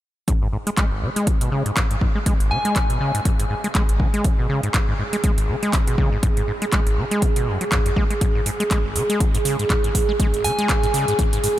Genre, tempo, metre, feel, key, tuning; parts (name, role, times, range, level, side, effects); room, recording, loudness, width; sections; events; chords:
acid house; 121 BPM; 4/4; swing 57% on 16ths; G# minor; A4 = 440 Hz
warm analog pad; sustained chords; 0.7-11.6 s; G#4; -27 LUFS; right 3 dB; chorus, sidechain pumping
acid bass, saw; riff; 0.3-11.5 s; G#1 to G#3; -24 LUFS; equal; overdrive, diffuse ambient delay
booming analog drum machine; drums; 0.3-11.5 s; handclaps, hi-hat; -27 LUFS; right 1 dB
electronic kick drum; drums; 0.3-11.3 s; -20 LUFS; equal
soft synth bell; melody; 2.5-3.0, 10.4-10.9 s; G#5; -27 LUFS; left 2 dB; chorus, analog delay
light reverb, digital ambience; -18 LUFS; side -13 dB against mid
0.3-11.6 A section